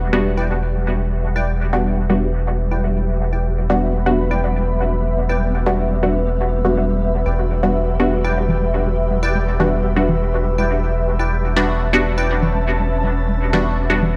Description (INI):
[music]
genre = dub techno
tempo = 122 BPM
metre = 4/4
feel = straight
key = E dorian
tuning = A4 = 441 Hz
[part]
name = airy breathy pad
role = sustained chords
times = 0.0-14.2 s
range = B4 to B5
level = -27 LUFS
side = equal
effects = chorus
[part]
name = filtered dub chord stab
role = stabs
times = 0.0-14.1 s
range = G3 to F#4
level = -23 LUFS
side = equal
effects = chorus, phaser, dub echo
[part]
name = soft dub sub bass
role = bass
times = 0.0-14.2 s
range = E1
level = -22 LUFS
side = equal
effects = none
[part]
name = flickering grainy texture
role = texture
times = 0.0-14.2 s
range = G3 to G4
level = -30 LUFS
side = equal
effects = built-in reverb
[part]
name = wavetable chord stab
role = riff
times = 0.4-12.3 s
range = E4 to G5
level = -30 LUFS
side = equal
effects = dub echo
[part]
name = congas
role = percussion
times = 8.5-14.1 s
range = none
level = -27 LUFS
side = equal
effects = studio reverb
[sound]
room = light reverb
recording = none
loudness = -19 LUFS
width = mono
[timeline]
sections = 0.0-14.2 A section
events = filter sweep on analog synth pad 0.0-14.2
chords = 0.0 Em7